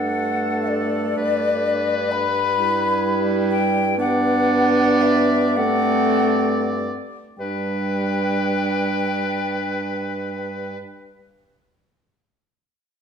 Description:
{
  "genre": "classical, slow romantic movement for wind quintet",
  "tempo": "31-46 BPM (dotted quarters)",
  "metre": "6/8",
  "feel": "rubato",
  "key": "G major",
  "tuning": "A4 = 441 Hz",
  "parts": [
    { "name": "mellow hollow silver concert flute", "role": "melody", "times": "0.0-10.8 s", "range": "D5 to B5", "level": "-24 LUFS", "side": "left 4 dB", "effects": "none" },
    { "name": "bright oboe", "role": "second line", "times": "0.0-10.8 s", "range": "A4 to D5", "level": "-27 LUFS", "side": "left 2 dB", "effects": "none" },
    { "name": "mellow French horn", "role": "accompaniment", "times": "0.0-10.8 s", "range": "G3 to B3", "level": "-24 LUFS", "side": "right 1 dB", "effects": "none" },
    { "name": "mellow clarinet", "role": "accompaniment", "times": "0.0-10.8 s", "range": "C4 to E4", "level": "-25 LUFS", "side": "right 3 dB", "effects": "none" },
    { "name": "warm bassoon", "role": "bass", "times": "0.0-10.8 s", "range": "G2", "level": "-27 LUFS", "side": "right 1 dB", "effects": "none" }
  ],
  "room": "wet stone room reverb, RT60 1.4 s",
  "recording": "dark, warm production",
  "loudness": "-18 LUFS",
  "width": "side -7 dB against mid",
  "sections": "0.0-7.4 A section; 7.4-10.8 B section",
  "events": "slowing down 0.0-7.4",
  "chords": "0.0 D/G; 1.2 G; 4.0 D7/G; 7.4 G"
}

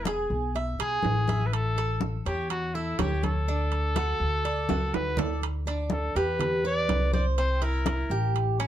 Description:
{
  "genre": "latin, Cuban son and guajira",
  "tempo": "123 BPM",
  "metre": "4/4",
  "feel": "straight",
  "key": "D major",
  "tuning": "A4 = 440 Hz",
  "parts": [
    { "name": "warm trumpet", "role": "melody", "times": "0.0-8.4 s", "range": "E4 to D5", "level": "-30 LUFS", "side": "left 1 dB", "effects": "none" },
    { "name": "Cuban tres", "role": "arpeggios", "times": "0.0-8.7 s", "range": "C4 to E5", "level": "-32 LUFS", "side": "right 3 dB", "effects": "none" },
    { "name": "upright bass", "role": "bass", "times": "0.0-8.7 s", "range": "E1 to E2", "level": "-28 LUFS", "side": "left 1 dB", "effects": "none" },
    { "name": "congas", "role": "percussion", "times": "0.1-8.7 s", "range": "none", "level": "-33 LUFS", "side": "left 1 dB", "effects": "none" },
    { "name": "timbales", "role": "percussion", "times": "0.1-8.7 s", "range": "none", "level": "-35 LUFS", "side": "right 8 dB", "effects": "none" }
  ],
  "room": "light reverb",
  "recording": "dark, warm production",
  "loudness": "-25 LUFS",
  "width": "side -11 dB against mid",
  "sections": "0.0-5.4 A section; 5.4-8.7 B section",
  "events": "drum fill 4.7-5.4",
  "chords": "0.0 E; 1.5 A; 3.5 D; 5.4 Dsus2; 6.4 Em7; 7.4 C7"
}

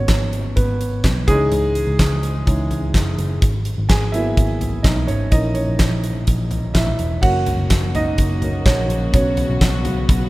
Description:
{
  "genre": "piano-driven pop",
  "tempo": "126 BPM",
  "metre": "4/4",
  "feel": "straight",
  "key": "unclear",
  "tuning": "A4 = 440 Hz",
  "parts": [
    { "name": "warm grand piano", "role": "accompaniment", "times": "0.0-10.3 s", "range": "E3 to G#5", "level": "-22 LUFS", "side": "right 1 dB", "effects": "none" },
    { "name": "vintage muted picked electric bass", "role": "bass", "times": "0.0-10.3 s", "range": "E1 to C#2", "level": "-21 LUFS", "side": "equal", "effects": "none" },
    { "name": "huge arena drum kit", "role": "drums", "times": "0.1-10.2 s", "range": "crash cymbal, handclaps, hi-hat, kick drum, snare drum, toms", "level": "-19 LUFS", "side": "equal", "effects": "none" },
    { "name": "warm studio string section", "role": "sustained chords", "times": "7.2-10.3 s", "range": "C#3 to F#4", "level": "-27 LUFS", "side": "left 1 dB", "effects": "none" }
  ],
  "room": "small room ambience",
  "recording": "rough home demo mix",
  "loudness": "-16 LUFS",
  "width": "side -19 dB against mid",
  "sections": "0.0-7.2 A section; 7.2-10.3 B section",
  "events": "grand piano solo 0.0-7.2, 7.2-10.3",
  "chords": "0.0 G#m7; 1.3 C#madd9; 3.4 G#m7; 5.3 A#dim; 7.2 F#; 9.1 Bsus2"
}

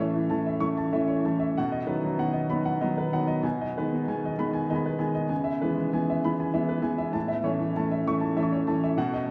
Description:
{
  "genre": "neoclassical minimalist piano",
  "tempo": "64 BPM (dotted quarters)",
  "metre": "6/8",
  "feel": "rubato",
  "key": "unclear",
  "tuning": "A4 = 441 Hz",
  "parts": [
    { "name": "clear upright piano", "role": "solo", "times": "0.0-9.3 s", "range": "A2 to C#6", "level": "-27 LUFS", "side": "equal", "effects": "none" }
  ],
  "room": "wet cathedral reverb, RT60 6.5 s",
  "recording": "recorded in a church or concert hall",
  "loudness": "-27 LUFS",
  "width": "mono",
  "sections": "0.0-9.3 A section",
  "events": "none",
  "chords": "0.0 A; 1.6 B; 3.4 G#m/B; 5.3 C#m7; 7.1 A"
}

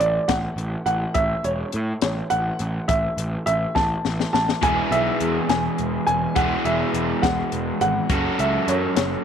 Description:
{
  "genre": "indie rock",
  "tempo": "69 BPM (dotted quarters)",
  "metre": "6/8",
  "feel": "straight",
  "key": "A major",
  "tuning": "A4 = 440 Hz",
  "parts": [
    { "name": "dark upright piano", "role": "melody", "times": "0.0-9.2 s", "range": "C#5 to A5", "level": "-24 LUFS", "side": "right 1 dB", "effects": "slapback echo" },
    { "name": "fuzz picked electric bass", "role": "bass", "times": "0.0-9.1 s", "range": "E1 to A2", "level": "-26 LUFS", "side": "equal", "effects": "overdrive" },
    { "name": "compact cocktail drum kit", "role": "drums", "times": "0.0-9.1 s", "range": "hi-hat, kick drum, snare drum", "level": "-25 LUFS", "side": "left 5 dB", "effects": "none" },
    { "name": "crunchy overdriven guitar", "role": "riff", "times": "4.6-9.2 s", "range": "E3 to A4", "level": "-23 LUFS", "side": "equal", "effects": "none" }
  ],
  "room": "light reverb, small room ambience",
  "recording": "1960s-style stereo",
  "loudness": "-20 LUFS",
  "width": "side -8 dB against mid",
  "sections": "0.0-9.2 A section",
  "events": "drum fill 3.8-4.6",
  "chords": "0.0 A5; 4.6 E; 8.1 F#m"
}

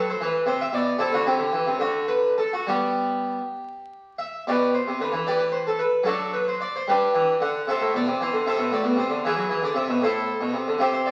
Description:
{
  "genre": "classical, baroque-style suite movement for harpsichord",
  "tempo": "66-80 BPM (dotted quarters)",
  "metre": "6/8",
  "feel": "rubato",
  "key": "G major",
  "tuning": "A4 = 440 Hz",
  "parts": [
    { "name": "harpsichord", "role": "solo", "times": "0.0-11.1 s", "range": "A2 to F#5", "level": "-24 LUFS", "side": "equal", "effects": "none" }
  ],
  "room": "wet stone room reverb, RT60 0.9 s",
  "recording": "very old 78 rpm record, vinyl crackle",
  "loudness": "-24 LUFS",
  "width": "mono",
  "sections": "0.0-4.4 A section; 4.4-11.1 B section",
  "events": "none",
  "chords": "0.2 E5; 1.0 C69; 1.8 N.C.; 2.7 G; 4.4 G/B; 6.0 D/F#; 6.9 G; 7.7 Am; 9.2 E7; 10.0 Am"
}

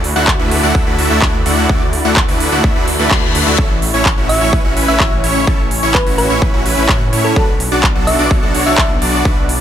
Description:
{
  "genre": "EDM, festival progressive house",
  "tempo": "127 BPM",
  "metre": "4/4",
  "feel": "straight",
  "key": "unclear",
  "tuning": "A4 = 440 Hz",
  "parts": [
    { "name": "lush unison pad", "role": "sustained chords", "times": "0.0-9.6 s", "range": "A3 to D5", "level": "-22 LUFS", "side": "right 1 dB", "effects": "chorus, phaser, vintage 12-bit sampler grit, sidechain pumping" },
    { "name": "wide detuned saw bass", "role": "bass", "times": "0.0-9.6 s", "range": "A1 to A2", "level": "-19 LUFS", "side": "equal", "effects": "chorus, sidechain pumping" },
    { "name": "big-room dance drum kit", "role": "drums", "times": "0.0-9.6 s", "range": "handclaps, hi-hat", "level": "-19 LUFS", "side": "equal", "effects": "none" },
    { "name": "supersaw chords", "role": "riff", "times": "0.2-9.4 s", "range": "A3 to F#5", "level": "-16 LUFS", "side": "equal", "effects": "sidechain pumping, tape echo" },
    { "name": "electronic kick drum", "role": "drums", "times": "0.3-9.3 s", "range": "none", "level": "-15 LUFS", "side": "equal", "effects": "overdrive" },
    { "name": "reverse cymbal", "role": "sound effects", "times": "2.8-3.6 s", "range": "none", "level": "-22 LUFS", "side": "left 7 dB", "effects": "none" },
    { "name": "thumb-piano-like synth pluck", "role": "melody", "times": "4.3-9.1 s", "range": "A4 to E5", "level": "-20 LUFS", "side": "equal", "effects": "chorus, tape echo" }
  ],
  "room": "light reverb",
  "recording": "none",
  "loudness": "-11 LUFS",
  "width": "side -10 dB against mid",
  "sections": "0.0-9.6 A section",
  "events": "reverse cymbal 2.8-3.6",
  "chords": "0.0 Dadd9; 3.6 A; 7.4 Bm"
}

